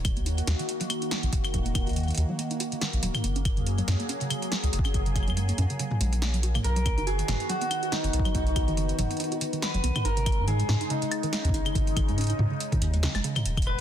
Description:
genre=IDM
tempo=141 BPM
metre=4/4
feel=swing 56% on 16ths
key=unclear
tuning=A4 = 444 Hz
part: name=phased analog pad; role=sustained chords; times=0.0-13.8 s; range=Bb2 to Ab4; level=-34 LUFS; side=equal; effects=phaser, chorus, sidechain pumping
part: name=warbly dusty pluck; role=arpeggios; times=0.0-13.3 s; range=Db3 to Gb4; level=-35 LUFS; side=right 3 dB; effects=chorus, cassette tape, ping-pong delay
part: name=round analog bass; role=bass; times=0.0-13.8 s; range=Eb1 to Ab2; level=-27 LUFS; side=equal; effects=tube saturation
part: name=electro analog drum machine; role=drums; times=0.0-13.8 s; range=claves, hi-hat, snare drum, toms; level=-31 LUFS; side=equal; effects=ping-pong delay
part: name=electronic kick drum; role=drums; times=0.0-13.6 s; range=none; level=-28 LUFS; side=equal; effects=none
part: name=electric guitar through a small old amp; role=melody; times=6.6-13.8 s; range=D#4 to B4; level=-31 LUFS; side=equal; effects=vintage 12-bit sampler grit, ping-pong delay
room=digital ambience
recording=dense, heavily limited modern master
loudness=-24 LUFS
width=side -10 dB against mid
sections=0.0-13.5 A section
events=filter sweep on synth arpeggio sound 0.0-13.5; drum fill 13.0-13.5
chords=0.0 Ebm; 3.2 Gbadd9; 6.6 B; 10.1 Absus4

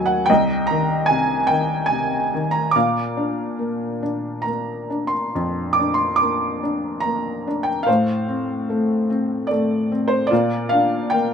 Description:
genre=classical, lyrical solo piano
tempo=73 BPM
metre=3/4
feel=rubato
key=unclear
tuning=A4 = 440 Hz
part: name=felt-muted upright piano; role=solo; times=0.0-11.3 s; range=C2 to D6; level=-18 LUFS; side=equal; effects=none
room=light reverb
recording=none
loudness=-18 LUFS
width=side -7 dB against mid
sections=0.0-11.3 A section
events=none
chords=0.3 Cm; 2.8 Bb; 7.9 F/A; 10.3 Bb

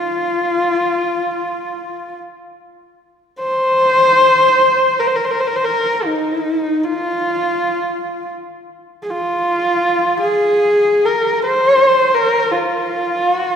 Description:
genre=mongolian traditional, Mongolian folk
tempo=free time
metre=none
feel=none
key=F yu mode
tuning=A4 = 439 Hz
part: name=rich horsehead fiddle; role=solo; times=0.0-13.6 s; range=Eb4 to C5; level=-14 LUFS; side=equal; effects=none
room=wet concert hall reverb, RT60 2.6 s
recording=heard from further back in the room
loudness=-13 LUFS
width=side -7 dB against mid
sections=0.0-2.8 A section; 2.8-13.6 A section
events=none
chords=none

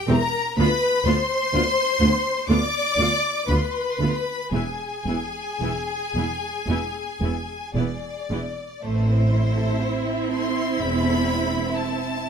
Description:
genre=classical, slow romantic movement for string orchestra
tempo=53-65 BPM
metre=4/4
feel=rubato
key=A minor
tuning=A4 = 441 Hz
part: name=rich studio violin section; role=melody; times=0.0-12.3 s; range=C5 to D6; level=-27 LUFS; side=left 3 dB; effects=none
part: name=warm studio violin section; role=second line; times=0.0-12.3 s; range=A3 to E5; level=-27 LUFS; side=left 3 dB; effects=none
part: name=rich studio viola section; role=accompaniment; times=0.1-12.3 s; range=B3 to G4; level=-27 LUFS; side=right 3 dB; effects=none
part: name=rich studio cello section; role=bass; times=0.1-11.6 s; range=D2 to A2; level=-26 LUFS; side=right 2 dB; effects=none
part: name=warm studio double bass section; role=bass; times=0.1-11.6 s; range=E1 to D2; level=-26 LUFS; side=right 2 dB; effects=none
room=light reverb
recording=none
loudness=-20 LUFS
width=side -7 dB against mid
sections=0.0-8.8 A section; 8.8-12.3 B section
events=none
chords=0.0 C/E; 0.6 Bdim/D; 4.5 E; 8.8 Am

